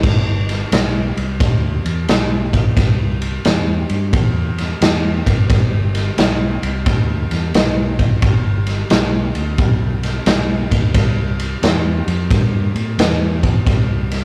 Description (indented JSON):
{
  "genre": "electric blues shuffle",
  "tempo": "88 BPM",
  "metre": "4/4",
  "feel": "swing 66% on 8ths",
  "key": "G mixolydian",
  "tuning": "A4 = 444 Hz",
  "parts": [
    { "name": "fingered electric bass", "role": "bass", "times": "0.0-14.2 s", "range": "F#1 to A2", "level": "-23 LUFS", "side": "equal", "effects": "none" },
    { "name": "raw garage drum kit", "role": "drums", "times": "0.0-14.2 s", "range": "crash cymbal, kick drum, ride cymbal, snare drum", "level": "-18 LUFS", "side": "equal", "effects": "none" }
  ],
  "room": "light reverb",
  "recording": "rough rehearsal-room recording",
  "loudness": "-17 LUFS",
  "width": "mono",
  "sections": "0.0-14.2 A section",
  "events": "none",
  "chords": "none"
}